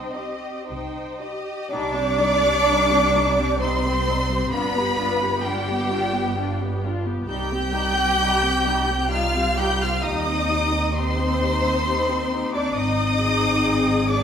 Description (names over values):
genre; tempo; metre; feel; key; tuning
classical, slow romantic movement for string orchestra; 65 BPM; 3/4; uneven beats, rubato; C minor; A4 = 436 Hz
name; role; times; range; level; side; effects
rich studio violin section; melody; 0.0-14.2 s; Eb5 to G6; -25 LUFS; left 1 dB; none
rich studio violin section; second line; 0.0-14.2 s; Eb4 to G5; -25 LUFS; left 1 dB; none
warm studio viola section; accompaniment; 0.0-14.2 s; G3 to Eb5; -27 LUFS; left 2 dB; none
rich studio cello section; bass; 0.0-14.2 s; G3 to G4; -27 LUFS; right 2 dB; none
warm studio double bass section; bass; 0.0-14.2 s; G1 to Eb2; -26 LUFS; right 2 dB; none
room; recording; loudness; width
wet recital hall reverb, RT60 1.5 s; recorded in a church or concert hall; -19 LUFS; side -8 dB against mid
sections
0.0-1.7 A section; 1.7-14.2 A section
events
none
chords
0.0 Cm; 4.5 G7; 7.3 Cm; 10.0 Cm/Eb; 12.8 Ab